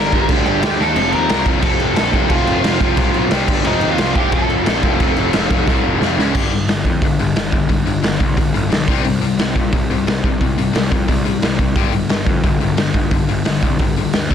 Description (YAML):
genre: punk rock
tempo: 178 BPM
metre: 4/4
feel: straight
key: G minor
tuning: A4 = 440 Hz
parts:
  - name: lead guitar through a small cranked amp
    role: melody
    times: 0.0-6.0 s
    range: Eb4 to Bb5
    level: -21 LUFS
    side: equal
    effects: overdrive, ping-pong delay
  - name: distorted electric guitar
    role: riff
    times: 0.0-14.3 s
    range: F2 to Eb4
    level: -20 LUFS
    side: left 13 dB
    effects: distortion
  - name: raw garage guitar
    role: riff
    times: 0.0-6.3 s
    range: F2 to Eb4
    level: -22 LUFS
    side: right 17 dB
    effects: overdrive
  - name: fuzz picked electric bass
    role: bass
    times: 0.0-14.3 s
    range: F1 to Bb2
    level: -22 LUFS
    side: right 1 dB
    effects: overdrive
  - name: raw garage drum kit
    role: drums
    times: 0.1-14.3 s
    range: crash cymbal, hi-hat, kick drum, snare drum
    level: -17 LUFS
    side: right 1 dB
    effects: none
room: little or no reverb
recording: dense, heavily limited modern master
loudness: -14 LUFS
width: side -8 dB against mid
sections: 0.0-6.3 A section; 6.3-14.3 B section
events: drum fill 0.8, 5.7-6.3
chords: 0.0 Gm; 0.8 Eb5; 1.0 F; 3.3 C5; 3.5 G5; 3.7 F; 6.2 C#5; 6.3 G5; 8.9 C5; 11.8 G5